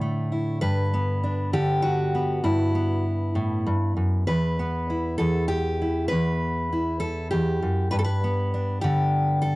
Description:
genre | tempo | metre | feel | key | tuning
folk, solo fingerstyle acoustic guitar | 66 BPM (dotted quarters) | 6/8 | straight | G major | A4 = 439 Hz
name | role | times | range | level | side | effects
fingerpicked steel-string acoustic guitar | solo | 0.0-9.6 s | E2 to B4 | -22 LUFS | equal | none
room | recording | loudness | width
light reverb | home recording on cassette | -22 LUFS | side -20 dB against mid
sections
0.0-9.6 A section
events
none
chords
0.0 Dsus2; 0.6 G; 4.3 Em; 7.9 G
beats
| 0.62 1.53 | 2.44 3.35 | 4.28 5.20 | 6.11 7.02 | 7.92 8.83

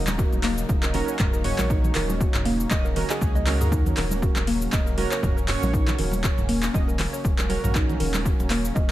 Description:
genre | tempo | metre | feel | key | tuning
afro house | 119 BPM | 4/4 | swing 56% on 16ths | Eb minor pentatonic | A4 = 440 Hz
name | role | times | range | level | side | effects
warm analog pad | sustained chords | 0.0-8.9 s | Db3 to Eb4 | -33 LUFS | equal | chorus, sidechain pumping
warm analog keys | stabs | 0.0-8.9 s | Db4 to Eb5 | -31 LUFS | right 5 dB | chorus, sidechain pumping, digital delay
warm sub bass | bass | 0.0-8.9 s | Eb1 to Eb2 | -28 LUFS | equal | sidechain pumping
afro-pop drum kit | drums | 0.1-8.9 s | handclaps, hi-hat, shaker, toms | -29 LUFS | equal | none
congas | percussion | 0.1-8.9 s | none | -32 LUFS | right 1 dB | none
mallet-like synth pluck | arpeggios | 0.2-8.9 s | Bb3 to Eb5 | -30 LUFS | left 1 dB | chorus, sidechain pumping, digital delay
electronic kick drum | drums | 0.2-8.9 s | none | -24 LUFS | equal | overdrive
room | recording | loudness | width
little or no reverb | none | -21 LUFS | side -14 dB against mid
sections
0.0-8.9 A section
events
none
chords
0.0 Ebm7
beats
0.19 0.69 1.20 | 1.70 2.21 2.71 3.21 | 3.72 4.22 4.73 5.23 | 5.74 6.24 6.74 7.25 | 7.75 8.26 8.76

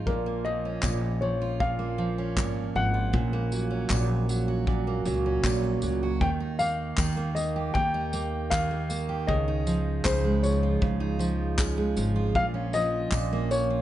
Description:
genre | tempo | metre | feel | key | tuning
acoustic pop | 78 BPM | 4/4 | straight | unclear | A4 = 440 Hz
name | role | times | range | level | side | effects
picked steel-string acoustic guitar | accompaniment | 0.0-13.8 s | Bb2 to G4 | -28 LUFS | right 3 dB | none
upright bass | bass | 0.0-13.8 s | Ab1 to Eb2 | -30 LUFS | left 1 dB | none
dark upright piano | melody | 0.1-13.8 s | Bb4 to G5 | -30 LUFS | left 3 dB | tape echo
loose indie drum kit | drums | 0.1-13.7 s | handclaps, kick drum, tambourine | -30 LUFS | left 1 dB | none
tambourine | percussion | 0.8-13.3 s | none | -41 LUFS | left 8 dB | none
room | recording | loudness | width
light reverb | nothing above 10.7 kHz | -24 LUFS | side -13 dB against mid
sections
0.0-6.2 A section; 6.2-13.8 B section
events
none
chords
0.1 Bbm; 3.1 Gb/Bb; 6.2 Eb; 9.3 Dbadd9; 12.4 Bbm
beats
| 0.07 0.84 1.61 2.38 | 3.14 3.91 4.68 5.45 | 6.21 6.98 7.75 8.52 | 9.28 10.05 10.82 11.59 | 12.36 13.12

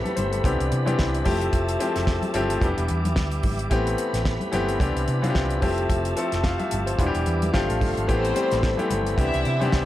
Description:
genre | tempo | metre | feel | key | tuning
disco | 110 BPM | 4/4 | swing 56% on 16ths | A minor | A4 = 442 Hz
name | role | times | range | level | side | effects
clear baby grand piano | accompaniment | 0.0-9.9 s | E3 to F5 | -25 LUFS | left 2 dB | none
tonewheel organ | sustained chords | 0.0-9.9 s | E4 to D6 | -32 LUFS | right 2 dB | chorus vibrato, stopped rotary speaker
damped 70s drum kit | drums | 0.1-9.9 s | hi-hat, kick drum, snare drum | -26 LUFS | equal | none
congas | percussion | 0.1-9.7 s | none | -34 LUFS | left 1 dB | none
hollow-body short-scale fingered electric bass | bass | 0.2-9.9 s | E1 to C3 | -26 LUFS | right 1 dB | none
warm studio string section | second line | 8.1-9.7 s | C4 to E5 | -27 LUFS | left 1 dB | none
room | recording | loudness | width
light reverb | none | -21 LUFS | side -14 dB against mid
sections
0.0-8.1 A section; 8.1-9.9 B section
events
grand piano fill 7.3-8.1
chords
0.4 Cmaj9; 1.3 Fmaj9; 2.6 Em7; 3.7 Am9; 4.8 Cmaj9; 5.6 Fmaj9; 7.0 Em7; 7.5 G9sus4; 8.1 Am9; 9.2 Cmaj9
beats
0.44 0.99 | 1.53 2.08 2.62 3.17 | 3.71 4.26 4.81 5.35 | 5.90 6.44 6.99 7.54 | 8.08 8.63 9.18 9.73

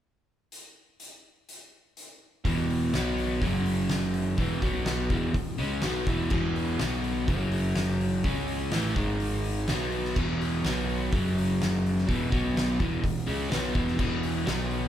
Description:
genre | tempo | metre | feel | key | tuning
garage rock duo or trio | 125 BPM | 4/4 | straight | E major | A4 = 439 Hz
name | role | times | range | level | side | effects
oversized low-tuned drum kit | drums | 0.5-14.8 s | crash cymbal, hi-hat, kick drum, snare drum | -31 LUFS | equal | none
fuzz picked electric bass | bass | 2.4-14.9 s | E1 to C#2 | -33 LUFS | equal | overdrive
crunchy overdriven guitar | riff | 2.5-14.9 s | E2 to C#4 | -27 LUFS | equal | none
room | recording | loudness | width
light reverb | band playing live in one room | -25 LUFS | side -11 dB against mid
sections
0.5-2.5 A section; 2.5-14.9 B section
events
none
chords
0.5 N.C.; 2.5 E5; 2.9 B5; 3.4 F#5; 4.4 E5; 4.6 B5; 5.1 E; 6.8 B5; 7.3 F#5; 8.2 C#5; 8.7 A5; 9.0 G#5; 9.7 B5; 10.2 E5; 10.6 B5; 11.1 F#5; 12.1 E5; 12.3 B5; 12.8 E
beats
| 0.52 1.00 1.49 1.97 | 2.46 2.94 3.42 3.90 | 4.39 4.87 5.35 5.84 | 6.32 6.80 7.28 7.76 | 8.24 8.73 9.21 9.69 | 10.17 10.65 11.13 11.61 | 12.09 12.56 13.04 13.52 | 14.00 14.48

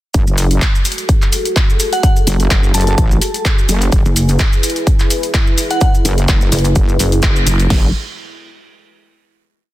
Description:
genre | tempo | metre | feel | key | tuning
bass house | 127 BPM | 4/4 | swing 55% on 16ths | F# minor | A4 = 440 Hz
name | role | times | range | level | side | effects
dark analog pad | sustained chords | 0.9-7.9 s | E4 to B4 | -23 LUFS | equal | chorus, sidechain pumping
wobble bass | bass | 0.1-7.9 s | F#1 to A1 | -14 LUFS | equal | chorus, tube saturation, sidechain pumping
big-room dance drum kit | drums | 0.1-7.8 s | crash cymbal, kick drum, snare drum | -14 LUFS | equal | none
big-room dance drum kit | drums | 0.1-7.7 s | handclaps, hi-hat | -20 LUFS | left 1 dB | none
maracas | percussion | 0.1-7.7 s | none | -23 LUFS | right 1 dB | none
glassy synth bell | melody | 1.9-5.9 s | F#5 to A5 | -22 LUFS | right 1 dB | chorus, digital delay
pulsing pluck wobble bass | bass | 4.1-7.4 s | F#1 | -13 LUFS | equal | chorus, overdrive, sidechain pumping
room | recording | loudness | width
little or no reverb | dense, heavily limited modern master | -11 LUFS | side -16 dB against mid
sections
0.1-7.7 drop; 7.7-9.6 final chord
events
drop 0.1-7.7; band accent 7.2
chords
0.1 F#madd9; 3.9 E/F#; 7.7 F#madd9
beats
| 0.14 0.62 1.09 1.56 | 2.03 2.51 2.98 3.45 | 3.92 4.39 4.87 5.34 | 5.81 6.29 6.76 7.23 | 7.70

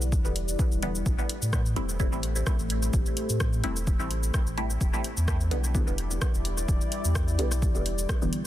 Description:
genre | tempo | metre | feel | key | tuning
dub techno | 128 BPM | 4/4 | swing 54% on 16ths | A minor | A4 = 440 Hz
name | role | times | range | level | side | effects
deep dark ambient pad | sustained chords | 0.0-8.5 s | G3 to D5 | -36 LUFS | left 1 dB | chorus, built-in reverb, sidechain pumping
filtered dub chord stab | stabs | 0.0-8.4 s | D3 to E4 | -34 LUFS | equal | phaser, sidechain pumping, dub echo
warm sub bass | bass | 0.0-8.3 s | E1 to A2 | -28 LUFS | equal | tube saturation, sidechain pumping
deep house drum kit | drums | 0.0-8.4 s | cabasa, hi-hat, rim click | -34 LUFS | left 1 dB | soft clipping on snare
electronic kick drum | drums | 0.1-8.2 s | none | -27 LUFS | equal | none
room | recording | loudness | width
little or no reverb | dense, heavily limited modern master | -24 LUFS | side -13 dB against mid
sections
0.0-8.5 A section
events
none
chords
0.0 Em7; 1.1 Am7; 4.8 Em7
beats
0.12 0.59 | 1.06 1.53 2.00 2.47 | 2.94 3.40 3.87 4.34 | 4.81 5.28 5.75 6.22 | 6.68 7.15 7.62 8.09

